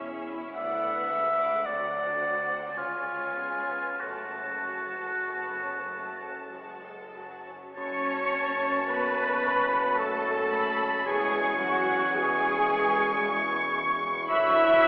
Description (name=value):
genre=classical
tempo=45-60 BPM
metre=3/4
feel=rubato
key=F# minor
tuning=A4 = 440 Hz
part: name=warm studio violin section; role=melody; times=0.0-14.9 s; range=E5 to C#6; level=-35 LUFS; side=left 1 dB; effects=none
part: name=rich studio violin section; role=second line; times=0.0-14.9 s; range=A3 to E6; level=-37 LUFS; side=equal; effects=none
part: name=warm oboe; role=second line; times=0.0-14.9 s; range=E#4 to A5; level=-29 LUFS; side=equal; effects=none
part: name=warm studio viola section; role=accompaniment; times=0.0-14.9 s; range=F#3 to E5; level=-28 LUFS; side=equal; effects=none
part: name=concert harp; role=arpeggios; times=0.0-14.9 s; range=E2 to C#5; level=-43 LUFS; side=left 1 dB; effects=none
part: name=clear studio double bass section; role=bass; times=0.0-14.9 s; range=E1 to F#2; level=-43 LUFS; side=equal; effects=none
part: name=warm studio cello section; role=bass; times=0.0-14.9 s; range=C#2 to E4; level=-41 LUFS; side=equal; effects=none
part: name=clear clarinet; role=second line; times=7.8-14.9 s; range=C#4 to D4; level=-40 LUFS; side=equal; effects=none
part: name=large flute ensemble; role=second line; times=7.8-14.9 s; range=C#6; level=-32 LUFS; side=equal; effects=none
part: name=warm bassoon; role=accompaniment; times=7.8-14.9 s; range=E3 to F#3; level=-36 LUFS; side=equal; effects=none
part: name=dark French horn section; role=sustained chords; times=7.8-14.9 s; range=F#3 to E4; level=-37 LUFS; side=equal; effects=none
part: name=warm tuba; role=bass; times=7.8-14.9 s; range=E1 to D2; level=-40 LUFS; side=equal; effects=none
room=wet concert hall reverb, RT60 2.0 s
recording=heard from further back in the room, telephone sound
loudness=-25 LUFS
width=side -25 dB against mid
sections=0.0-7.8 A section; 7.8-14.9 A section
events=none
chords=0.0 C#m/E; 0.6 Bm/D; 1.7 D7; 2.8 C#7; 4.0 F#m; 11.1 C#m/E; 14.3 Bm/D